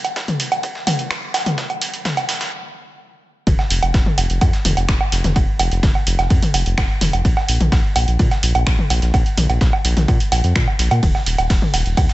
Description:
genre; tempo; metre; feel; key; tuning
melodic techno; 127 BPM; 4/4; straight; unclear; A4 = 442 Hz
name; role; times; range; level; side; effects
punchy analog drum machine; drums; 0.0-12.1 s; finger snaps, hi-hat, ride cymbal, toms, woodblock; -20 LUFS; right 1 dB; sidechain pumping on hats, sidechain pumping on toms, sidechain pumping on perc, sidechain pumping on cymbals
dusty soul sampler-style drum kit; drums; 0.2-12.1 s; ride cymbal, snare drum; -30 LUFS; right 1 dB; overdrive, high-pass filter on snare, sidechain pumping on cymbals, high-pass filter on cymbals
electronic kick drum; drums; 0.2-12.1 s; none; -17 LUFS; equal; high-pass filter on kick
round analog bass; bass; 3.5-12.1 s; Eb1 to Bb2; -18 LUFS; equal; sidechain pumping
room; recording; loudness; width
light reverb; nothing above 8.0 kHz; -15 LUFS; side -17 dB against mid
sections
0.0-3.5 A section; 3.5-12.1 B section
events
build-up 0.0-3.5; stop 2.5-3.5; drop 3.5-12.1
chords
none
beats
0.16 0.63 1.11 | 1.58 2.05 2.52 3.00 | 3.47 3.94 4.41 4.89 | 5.36 5.83 6.30 6.78 | 7.25 7.72 8.19 8.67 | 9.14 9.61 10.08 10.56 | 11.03 11.50 11.97

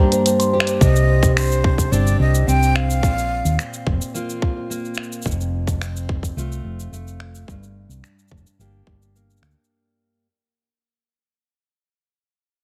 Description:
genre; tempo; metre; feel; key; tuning
folktronica; 108 BPM; 4/4; straight; unclear; A4 = 439 Hz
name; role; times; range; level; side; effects
breathy jazz flute; melody; 0.0-3.9 s; C5 to Bb5; -27 LUFS; equal; delay
music box; second line; 0.0-0.8 s; G4 to C6; -25 LUFS; equal; vintage 12-bit sampler grit, delay
warbly tape-like pad; sustained chords; 0.0-0.8 s; Bb3 to G4; -31 LUFS; equal; none
fingerpicked steel-string acoustic guitar; arpeggios; 0.0-10.3 s; F2 to G4; -28 LUFS; equal; low-pass filter, delay
organic electronic drum kit; drums; 0.1-9.7 s; cabasa, finger snaps, hi-hat; -29 LUFS; equal; none
hollow-body short-scale fingered electric bass; bass; 0.8-9.5 s; F1 to Eb2; -22 LUFS; equal; tube saturation
electronic kick drum; drums; 0.8-9.0 s; none; -21 LUFS; equal; overdrive
room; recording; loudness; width
little or no reverb; none; -19 LUFS; mono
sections
0.8-9.7 A section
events
break 0.3-0.8; fade-out 0.8-9.7; filter sweep on steel-string acoustic guitar 0.8-9.7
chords
0.0 Gm; 0.8 Cmadd9; 3.0 Bbsus2; 5.3 F; 7.5 Gm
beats
0.25 | 0.81 1.36 1.92 2.48 | 3.03 3.59 4.14 4.70 | 5.25 5.81 6.36 6.92 | 7.47 8.03 8.59 9.14

